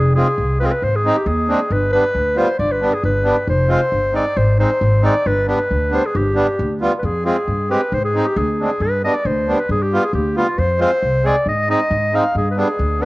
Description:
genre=klezmer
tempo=135 BPM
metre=2/4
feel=straight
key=G phrygian dominant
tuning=A4 = 441 Hz
part: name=clear clarinet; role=melody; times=0.0-13.1 s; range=F4 to F5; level=-19 LUFS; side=equal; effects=none
part: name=upright bass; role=bass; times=0.0-13.1 s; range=F1 to Ab2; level=-19 LUFS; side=equal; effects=none
part: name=accordion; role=accompaniment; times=0.2-13.1 s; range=G3 to Ab4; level=-21 LUFS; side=right 1 dB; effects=cassette tape
room=moderate spring reverb, RT60 2.4 s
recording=home recording on cassette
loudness=-15 LUFS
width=side -20 dB against mid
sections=0.0-7.0 A section; 7.0-13.1 A section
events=none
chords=0.0 Fm; 0.8 Ab; 1.7 G; 3.5 Fm; 4.4 Ab; 5.3 G; 7.0 Fm; 7.9 Ab; 8.8 G; 10.6 Fm; 11.5 Ab; 12.3 G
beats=0.38 | 0.82 1.26 | 1.71 2.15 | 2.60 3.04 | 3.48 3.93 | 4.37 4.81 | 5.26 5.70 | 6.14 6.59 | 7.03 7.47 | 7.92 8.36 | 8.80 9.25 | 9.69 10.13 | 10.57 11.02 | 11.46 11.90 | 12.35 12.79

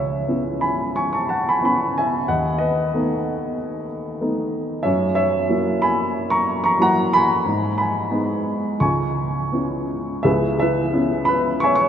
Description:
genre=classical, lyrical solo piano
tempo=82-95 BPM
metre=4/4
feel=rubato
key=C# minor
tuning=A4 = 443 Hz
part: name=warm upright piano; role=solo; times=0.0-11.9 s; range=C#2 to C#6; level=-18 LUFS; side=equal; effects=none
room=wet cathedral reverb, RT60 5.9 s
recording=in a vast, echoing space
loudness=-18 LUFS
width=side -9 dB against mid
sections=0.0-10.3 A section; 10.3-11.9 A section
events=none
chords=0.0 C#m7; 2.3 B7/D#; 4.8 F#7; 7.5 G#m; 8.8 C#m7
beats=0.28 0.95 1.62 | 2.28 2.93 3.58 4.21 | 4.85 5.50 6.15 6.81 | 7.47 8.13 8.82 9.54 | 10.25 10.94 11.62

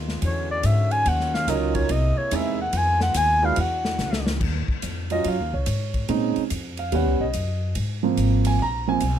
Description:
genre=jazz, big band swing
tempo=143 BPM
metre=4/4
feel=swing 66% on 8ths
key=Eb minor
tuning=A4 = 442 Hz
part: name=clear trombone section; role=sustained chords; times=0.0-4.4 s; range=C3 to F#4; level=-34 LUFS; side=left 2 dB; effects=none
part: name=upright bass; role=bass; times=0.0-9.2 s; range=Ab1 to Bb2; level=-24 LUFS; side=left 1 dB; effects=none
part: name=swinging big-band drum kit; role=drums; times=0.1-9.1 s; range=crash cymbal, hi-hat, kick drum, ride cymbal, snare drum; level=-31 LUFS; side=left 1 dB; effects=none
part: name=mellow clarinet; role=melody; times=0.3-4.3 s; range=Db5 to Ab5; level=-23 LUFS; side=left 1 dB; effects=none
part: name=warm grand piano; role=accompaniment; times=1.5-9.2 s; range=F3 to Bb5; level=-24 LUFS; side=right 6 dB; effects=none
room=light reverb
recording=close, detailed microphones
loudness=-20 LUFS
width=side -10 dB against mid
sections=0.0-4.4 A section; 4.4-9.2 A section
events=clarinet solo 0.0-4.4; drum fill 4.0-4.4; grand piano solo 4.4-9.2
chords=0.2 E13; 1.1 Ebm9; 1.9 C7alt; 2.7 Fm7b5; 3.6 E9; 4.4 Ebm9; 6.1 Bbm11; 6.9 Eb7alt; 7.8 Ab69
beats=0.22 0.64 | 1.06 1.48 1.90 2.31 | 2.73 3.15 3.57 3.99 | 4.41 4.83 5.25 5.67 | 6.08 6.50 6.92 7.34 | 7.76 8.18 8.59 9.01

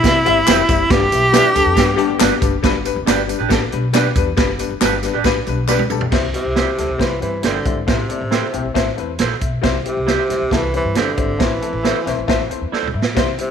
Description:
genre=uptempo 1960s-style soul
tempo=137 BPM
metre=4/4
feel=straight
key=C major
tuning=A4 = 440 Hz
part: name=breathy tenor saxophone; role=melody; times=0.0-2.2, 6.3-13.5 s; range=C3 to G4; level=-19 LUFS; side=right 1 dB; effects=tape echo
part: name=warm upright piano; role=accompaniment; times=0.0-13.5 s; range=G3 to C6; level=-21 LUFS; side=left 12 dB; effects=none
part: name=upright bass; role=bass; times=0.0-13.3 s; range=F1 to C3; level=-24 LUFS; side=left 1 dB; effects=none
part: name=swinging big-band drum kit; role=drums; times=0.0-13.5 s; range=crash cymbal, hi-hat, kick drum, snare drum, toms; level=-19 LUFS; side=right 3 dB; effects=none
part: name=tambourine and handclaps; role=percussion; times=0.0-6.0 s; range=none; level=-26 LUFS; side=left 4 dB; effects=none
part: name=electric guitar through a small old amp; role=stabs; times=0.5-12.9 s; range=D4 to C5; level=-24 LUFS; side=right 11 dB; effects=none
part: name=electric guitar through a small old amp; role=riff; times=1.3-2.4 s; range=B3 to B4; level=-24 LUFS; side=left 13 dB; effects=none
room=moderate echo chamber reverb, RT60 1.3 s, small room ambience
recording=1960s-style stereo with parts hard left and right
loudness=-15 LUFS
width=side -7 dB against mid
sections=0.0-2.6 A section; 2.6-6.1 B section; 6.1-13.5 C section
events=drum fill 5.7-6.1, 12.7-13.2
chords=0.0 C; 0.9 G; 6.1 C; 7.9 Am; 9.6 C; 11.4 Am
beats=0.04 0.47 | 0.91 1.34 1.77 2.20 | 2.63 3.07 3.50 3.94 | 4.37 4.81 5.24 5.68 | 6.12 6.56 7.00 7.44 | 7.88 8.32 8.76 9.20 | 9.64 10.08 10.52 10.96 | 11.40 11.85 12.29 12.73 | 13.17

